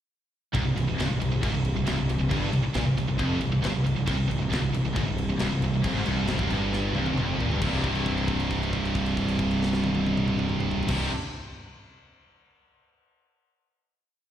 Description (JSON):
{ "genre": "heavy metal", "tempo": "136 BPM", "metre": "4/4", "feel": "straight", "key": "C major", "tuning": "A4 = 440 Hz", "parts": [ { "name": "cranked stack guitar", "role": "riff", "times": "0.5-11.1 s", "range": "C2 to E4", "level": "-32 LUFS", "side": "left 1 dB", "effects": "overdrive, slapback echo" }, { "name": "high-gain distorted guitar", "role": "riff", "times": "0.5-11.1 s", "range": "C2 to C3", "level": "-32 LUFS", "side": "left 9 dB", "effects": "distortion" }, { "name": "scooped high-gain guitar", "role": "riff", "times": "0.5-11.1 s", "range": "C2 to C3", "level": "-28 LUFS", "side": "right 5 dB", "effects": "distortion, slapback echo" }, { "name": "fuzz picked electric bass", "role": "bass", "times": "0.5-11.1 s", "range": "C1 to Bb1", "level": "-29 LUFS", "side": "equal", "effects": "overdrive" }, { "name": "tight metal drum kit", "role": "drums", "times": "0.5-11.0 s", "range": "crash cymbal, kick drum, snare drum, toms", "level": "-33 LUFS", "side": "equal", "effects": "none" } ], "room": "little or no reverb", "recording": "live gig heard through the venue's PA, recital hall reverb", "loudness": "-24 LUFS", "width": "side -10 dB against mid", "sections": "0.5-7.6 riff; 7.6-11.2 final chord", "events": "drum fill 6.7-7.6; held note 7.6-10.9", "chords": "0.5 C5; 7.6 C" }